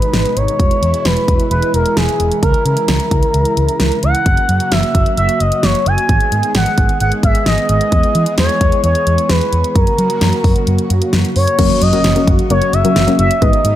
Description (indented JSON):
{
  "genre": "synth-pop",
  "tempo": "131 BPM",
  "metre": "4/4",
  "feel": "straight",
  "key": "unclear",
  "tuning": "A4 = 442 Hz",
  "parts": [
    { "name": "expressive portamento lead", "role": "melody", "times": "0.0-13.8 s", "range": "G#4 to G#5", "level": "-16 LUFS", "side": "equal", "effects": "chorus, shimmer reverb" },
    { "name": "brassy analog pad", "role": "sustained chords", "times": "0.0-13.8 s", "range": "B2 to G#4", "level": "-21 LUFS", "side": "right 2 dB", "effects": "chorus, shimmer reverb" },
    { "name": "pop drum kit", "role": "drums", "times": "0.0-13.8 s", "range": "crash cymbal, hi-hat, kick drum, snare drum", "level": "-16 LUFS", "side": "equal", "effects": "none" },
    { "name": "downlifter and impact", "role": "sound effects", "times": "0.0-0.6, 11.6-13.4 s", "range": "none", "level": "-30 LUFS", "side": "right 1 dB", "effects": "none" },
    { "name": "vintage muted fingered electric bass", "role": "bass", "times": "0.1-13.7 s", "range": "E1 to F#3", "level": "-16 LUFS", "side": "equal", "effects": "none" },
    { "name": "warbly dusty pluck", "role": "accompaniment", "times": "11.6-13.7 s", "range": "F#3 to B4", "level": "-16 LUFS", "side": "left 3 dB", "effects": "chorus, shimmer reverb" }
  ],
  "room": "light reverb, digital ambience",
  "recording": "none",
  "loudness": "-11 LUFS",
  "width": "side -12 dB against mid",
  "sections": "0.0-11.6 A section; 11.6-13.8 B section",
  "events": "impact 11.6-13.4",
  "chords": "0.0 G#m; 0.6 E; 2.4 C#m; 4.3 F#; 6.1 G#m; 7.9 E; 9.8 F#",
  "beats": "0.14 | 0.59 1.05 1.51 1.97 | 2.43 2.88 3.34 3.80 | 4.26 4.72 5.17 5.63 | 6.09 6.55 7.01 7.46 | 7.92 8.38 8.84 9.30 | 9.76 10.21 10.67 11.13 | 11.59 12.04 12.50 12.96 | 13.42"
}